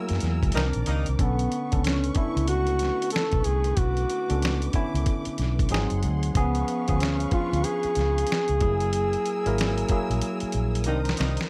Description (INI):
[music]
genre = R&B, neo-soul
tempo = 93 BPM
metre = 4/4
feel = swing 62% on 16ths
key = unclear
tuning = A4 = 440 Hz
[part]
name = tine electric piano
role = accompaniment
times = 0.0-11.5 s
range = D3 to Bb4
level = -33 LUFS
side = equal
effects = none
[part]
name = warm studio string section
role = sustained chords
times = 0.0-11.5 s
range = A3 to E6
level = -40 LUFS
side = equal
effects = none
[part]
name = vintage muted fingered electric bass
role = bass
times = 0.1-11.4 s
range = F#1 to F#2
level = -29 LUFS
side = equal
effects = none
[part]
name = dusty soul sampler-style drum kit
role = drums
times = 0.1-11.5 s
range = hi-hat, kick drum, snare drum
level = -30 LUFS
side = equal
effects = none
[part]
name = clear horn section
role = stabs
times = 0.5-1.1, 10.9-11.4 s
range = Eb3 to Eb4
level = -35 LUFS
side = equal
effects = none
[part]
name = dark duduk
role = melody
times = 1.2-10.9 s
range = B3 to A4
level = -30 LUFS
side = equal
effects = slapback echo
[sound]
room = little or no reverb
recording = none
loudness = -25 LUFS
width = mono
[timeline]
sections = 0.0-11.5 A section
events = band accent 0.0-1.2, 8.9-11.5; drum fill 10.2-11.5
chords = 0.0 F#9; 0.5 Cm9; 1.2 Bm9; 5.7 G#7; 6.3 C#7; 8.6 F#9; 10.9 Cm9